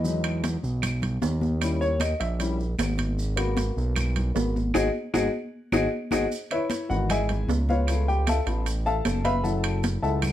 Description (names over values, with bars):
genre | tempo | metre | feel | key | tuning
Afro-Cuban jazz | 153 BPM | 4/4 | straight | G# minor, C# minor from 6.3 s | A4 = 439 Hz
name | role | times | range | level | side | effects
warm baby grand piano | accompaniment | 0.0-10.3 s | D#3 to B5 | -27 LUFS | left 3 dB | none
smooth gliding synth bass | bass | 0.0-10.3 s | F#1 to E2 | -26 LUFS | right 1 dB | none
congas | percussion | 0.0-10.3 s | none | -31 LUFS | equal | none
maracas | percussion | 0.0-10.3 s | none | -42 LUFS | right 3 dB | none
claves | percussion | 0.2-10.3 s | none | -37 LUFS | equal | none
timbales | percussion | 0.2-10.3 s | none | -33 LUFS | right 8 dB | none
room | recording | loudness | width
light reverb | none | -23 LUFS | side -12 dB against mid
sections
0.0-6.3 A section; 6.3-10.3 A section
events
grand piano solo 0.0-10.3; band accent 4.8-6.3; drum fill 5.5-6.3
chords
0.1 Emaj9; 1.6 D#7b9; 3.2 G#m7; 6.3 C#m9; 7.9 C#7alt; 9.4 F#m7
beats
| 0.05 0.44 0.83 1.23 | 1.62 2.01 2.40 2.79 | 3.18 3.58 3.97 4.36 | 4.75 5.14 5.53 5.92 | 6.32 6.71 7.10 7.49 | 7.88 8.27 8.67 9.06 | 9.45 9.84 10.23